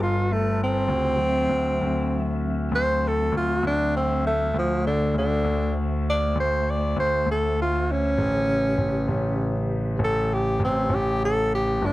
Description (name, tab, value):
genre	slow blues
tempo	66 BPM (dotted quarters)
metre	12/8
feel	straight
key	D mixolydian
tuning	A4 = 440 Hz
part	warm tenor saxophone	melody	0.0-11.9 s	D3 to D5	-23 LUFS	equal	slapback echo
part	mellow tonewheel organ	sustained chords	0.0-11.9 s	C#3 to E5	-32 LUFS	equal	slow rotary speaker, chorus vibrato
part	warm concert grand piano	bass	0.0-11.9 s	G1 to D2	-25 LUFS	left 1 dB	none
room	light reverb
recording	dry, close 1970s-style studio recording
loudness	-21 LUFS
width	side -17 dB against mid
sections	0.0-11.9 A section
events	tenor saxophone solo 0.0-11.9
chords	0.0 G9; 0.9 D9; 8.2 A9